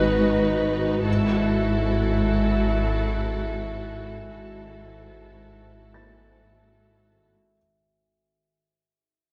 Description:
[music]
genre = cinematic, suspense film score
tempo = free time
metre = none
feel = none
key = unclear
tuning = A4 = 440 Hz
[part]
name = rich studio violin section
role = melody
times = 0.0-7.3 s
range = A4 to B4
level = -32 LUFS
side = equal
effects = none
[part]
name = rich studio viola section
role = accompaniment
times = 0.0-7.3 s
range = D#4 to F#4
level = -31 LUFS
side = equal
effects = none
[part]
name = glass harmonica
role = sustained chords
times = 0.0-7.5 s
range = F#4 to E5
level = -33 LUFS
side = equal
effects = none
[part]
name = rich studio cello section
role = bass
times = 0.0-7.3 s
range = G#2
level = -30 LUFS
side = equal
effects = none
[part]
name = warm studio double bass section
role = bass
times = 0.0-7.3 s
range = G#1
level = -31 LUFS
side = equal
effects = none
[part]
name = organ-like drone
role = drone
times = 0.0-7.5 s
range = G#1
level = -32 LUFS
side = equal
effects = ensemble chorus, built-in reverb, phaser
[part]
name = felt-muted upright piano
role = texture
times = 5.9-7.6 s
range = A6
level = -43 LUFS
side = equal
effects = none
[sound]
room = moderate scoring stage reverb, RT60 1.6 s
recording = none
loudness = -23 LUFS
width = mono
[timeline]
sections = 0.0-7.6 A section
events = fade-out 0.0-7.6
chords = 0.0 G#m7; 1.1 F#m7/G#

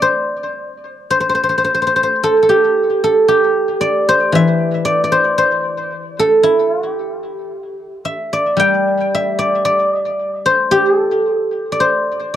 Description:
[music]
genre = chinese traditional, Chinese solo plucked strings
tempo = 56 BPM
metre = 2/4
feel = rubato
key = G zhi mode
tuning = A4 = 440 Hz
[part]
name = guzheng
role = solo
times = 0.0-12.4 s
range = E3 to G5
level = -13 LUFS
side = equal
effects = tape echo
[sound]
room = little or no reverb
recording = dry, close 1970s-style studio recording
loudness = -13 LUFS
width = side -11 dB against mid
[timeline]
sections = 0.0-12.4 A section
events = none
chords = none

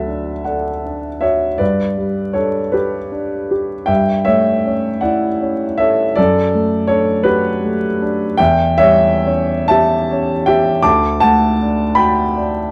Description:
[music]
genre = classical, romantic nocturne for solo piano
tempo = 53 BPM (dotted quarters)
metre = 6/8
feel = rubato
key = D major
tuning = A4 = 441 Hz
[part]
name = warm upright piano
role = solo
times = 0.0-12.7 s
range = D2 to D6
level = -16 LUFS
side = equal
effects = none
[sound]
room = light reverb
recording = close, detailed microphones, vinyl crackle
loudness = -16 LUFS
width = mono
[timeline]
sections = 0.0-12.7 A section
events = none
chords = 0.0 D; 1.6 G; 3.9 A7/G; 6.2 D/F#; 8.4 C#dim/E; 10.8 D

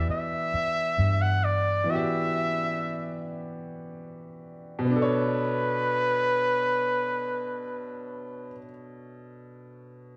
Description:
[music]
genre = slow six-eight R&B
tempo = 37-45 BPM (dotted quarters)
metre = 6/8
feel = straight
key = B minor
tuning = A4 = 441 Hz
[part]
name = clear flugelhorn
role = melody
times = 0.0-8.6 s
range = B4 to F#5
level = -29 LUFS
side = equal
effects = none
[part]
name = clear baby grand piano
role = accompaniment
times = 0.0-10.2 s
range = B2 to D5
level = -34 LUFS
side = equal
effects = none
[part]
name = vintage muted fingered electric bass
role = bass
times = 0.0-1.9 s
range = G2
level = -27 LUFS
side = equal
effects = none
[sound]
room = wet stone room reverb, RT60 1.3 s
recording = band playing live in one room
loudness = -27 LUFS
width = mono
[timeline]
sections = 0.0-4.9 A section; 4.9-8.1 B section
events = slowing down 0.0-4.9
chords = 0.0 Em9; 4.9 Bm9

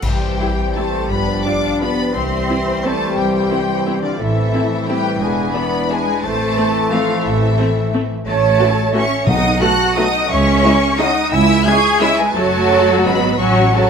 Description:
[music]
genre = classical, orchestral ballroom waltz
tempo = 175 BPM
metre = 3/4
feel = uneven beats, rubato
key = C major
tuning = A4 = 439 Hz
[part]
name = warm studio violin section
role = melody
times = 0.0-13.9 s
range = D5 to G#6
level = -22 LUFS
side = left 4 dB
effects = none
[part]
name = mellow flute section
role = second line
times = 0.0-13.9 s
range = F4 to C#6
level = -22 LUFS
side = right 4 dB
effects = none
[part]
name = rich studio violin section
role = second line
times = 0.0-13.9 s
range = D4 to G#5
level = -24 LUFS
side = left 3 dB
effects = none
[part]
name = clear trombone section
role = sustained chords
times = 0.0-13.9 s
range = C#3 to B3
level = -25 LUFS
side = right 2 dB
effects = none
[part]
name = mellow French horn section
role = sustained chords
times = 0.0-13.9 s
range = B3 to A4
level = -25 LUFS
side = left 7 dB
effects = none
[part]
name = rich studio cello section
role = bass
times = 0.0-13.9 s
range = D3 to G#4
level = -21 LUFS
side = right 2 dB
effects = none
[part]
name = rich studio double bass section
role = bass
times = 0.0-13.9 s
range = E1 to C#2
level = -21 LUFS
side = right 2 dB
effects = none
[part]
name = clash cymbals and concert bass drum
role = percussion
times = 0.0-0.7 s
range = none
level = -24 LUFS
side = left 1 dB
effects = none
[part]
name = rich studio viola section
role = accompaniment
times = 0.4-13.9 s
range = F#3 to G4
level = -21 LUFS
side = left 1 dB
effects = none
[part]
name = timpani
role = percussion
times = 9.3-9.8 s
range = B2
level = -21 LUFS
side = left 1 dB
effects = none
[sound]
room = moderate concert hall reverb, RT60 1.8 s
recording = none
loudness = -14 LUFS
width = side -6 dB against mid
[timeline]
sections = 0.0-13.9 A section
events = band accent 0.0-0.4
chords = 0.0 C; 1.1 G7; 2.1 C; 4.2 Am; 5.2 E7; 6.2 Am; 8.3 F#m7/A; 9.3 B7; 10.3 C#m; 12.3 F#m; 13.4 F#m/A

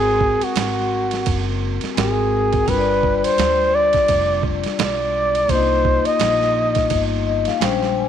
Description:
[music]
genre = hip hop, jazz-hop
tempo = 85 BPM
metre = 4/4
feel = swing 59% on 16ths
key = unclear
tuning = A4 = 440 Hz
[part]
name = breathy flugelhorn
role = melody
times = 0.0-7.1 s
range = Gb4 to Eb5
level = -18 LUFS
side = right 1 dB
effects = none
[part]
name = vibraphone with soft mallets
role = accompaniment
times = 0.0-8.1 s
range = G3 to Ab5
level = -22 LUFS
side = left 10 dB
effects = none
[part]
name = upright bass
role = bass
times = 0.0-8.1 s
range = F1 to D2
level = -25 LUFS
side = right 1 dB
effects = none
[part]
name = boom bap sampler-style drum kit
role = drums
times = 0.2-7.9 s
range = hi-hat, kick drum, ride cymbal, snare drum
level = -24 LUFS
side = right 6 dB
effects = none
[sound]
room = light reverb, small room reverb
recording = 1960s-style stereo with parts hard left and right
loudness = -16 LUFS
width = side -9 dB against mid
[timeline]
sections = 0.0-8.1 A section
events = vibraphone fill 6.9-8.1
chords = 0.0 Ab9; 2.7 G7; 5.5 Cm7

